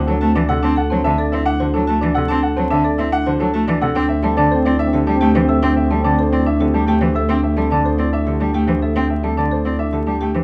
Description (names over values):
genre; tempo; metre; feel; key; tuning
classical, minimalist pattern music; 108 BPM; 3/4; straight; D mixolydian; A4 = 440 Hz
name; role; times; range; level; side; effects
clear baby grand piano; melody; 0.0-10.4 s; G4 to A5; -26 LUFS; equal; none
warm French horn; second line; 0.0-0.4, 4.0-7.1 s; C4; -24 LUFS; equal; none
rich cello; accompaniment; 0.0-10.4 s; C3 to C4; -23 LUFS; equal; none
marimba with medium hard mallets; arpeggios; 0.0-10.4 s; C4 to A4; -24 LUFS; equal; none
rich double bass; bass; 0.0-10.4 s; D2; -23 LUFS; equal; none
celesta; arpeggios; 0.1-10.3 s; A5 to E6; -27 LUFS; equal; none
room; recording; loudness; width
light reverb; dark, warm production, vinyl crackle; -17 LUFS; mono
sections
0.0-10.4 A section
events
none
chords
0.0 D7; 4.0 Am7/D